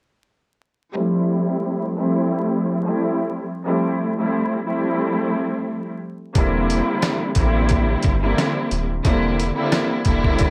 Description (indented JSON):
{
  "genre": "hip hop, boom-bap hip-hop",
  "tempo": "89 BPM",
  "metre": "4/4",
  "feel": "swing 55% on 16ths",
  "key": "F major",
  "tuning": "A4 = 445 Hz",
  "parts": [
    { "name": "warm symphonic string section", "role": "accompaniment", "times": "0.9-10.5 s", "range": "D3 to E4", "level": "-22 LUFS", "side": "equal", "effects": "high-pass filter, low-pass filter" },
    { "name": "soft dub sub bass", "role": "bass", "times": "6.4-10.5 s", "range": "D1 to A1", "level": "-25 LUFS", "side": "equal", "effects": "none" },
    { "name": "dusty soul sampler-style drum kit", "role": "drums", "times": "6.4-10.5 s", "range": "hi-hat, kick drum, rim click, snare drum", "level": "-23 LUFS", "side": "equal", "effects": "none" }
  ],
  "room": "light reverb",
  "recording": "vinyl crackle",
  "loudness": "-21 LUFS",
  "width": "mono",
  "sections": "1.0-10.5 A section",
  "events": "filter sweep on string section 1.0-10.5",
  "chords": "1.0 Fmaj9; 6.4 C9"
}